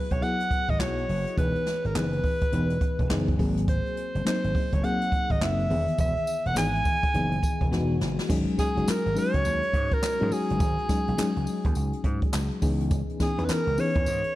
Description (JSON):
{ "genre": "R&B, new jack swing", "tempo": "104 BPM", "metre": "4/4", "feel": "swing 62% on 16ths", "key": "unclear", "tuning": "A4 = 439 Hz", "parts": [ { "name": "clear alto saxophone", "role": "melody", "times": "0.0-14.4 s", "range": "G#4 to G#5", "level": "-29 LUFS", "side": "right 1 dB", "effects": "none" }, { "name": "FM electric piano with tremolo", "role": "accompaniment", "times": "0.0-14.4 s", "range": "D#3 to B4", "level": "-29 LUFS", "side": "left 2 dB", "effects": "none" }, { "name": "vintage slap bass", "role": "bass", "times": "0.1-14.2 s", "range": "E1 to G#2", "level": "-29 LUFS", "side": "equal", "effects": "none" }, { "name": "jazz brush drum kit", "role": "drums", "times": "0.1-14.3 s", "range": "crash cymbal, handclaps, hi-hat, kick drum, snare drum, tambourine", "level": "-28 LUFS", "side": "equal", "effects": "none" } ], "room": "light reverb, studio reverb", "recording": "dark, warm production", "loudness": "-23 LUFS", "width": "side -16 dB against mid", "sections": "0.0-8.3 A section; 8.3-14.4 B section", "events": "drum fill 7.7-8.3", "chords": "0.0 F#9sus4; 1.4 Emaj7; 3.4 G#9; 5.7 Emaj7; 8.3 G#7sus4; 12.6 C#m9", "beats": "0.22 0.80 | 1.38 1.95 2.53 3.11 | 3.68 4.26 4.84 5.41 | 5.99 6.57 7.14 7.72 | 8.30 8.88 9.45 10.03 | 10.61 11.18 11.76 12.34 | 12.91 13.49 14.07" }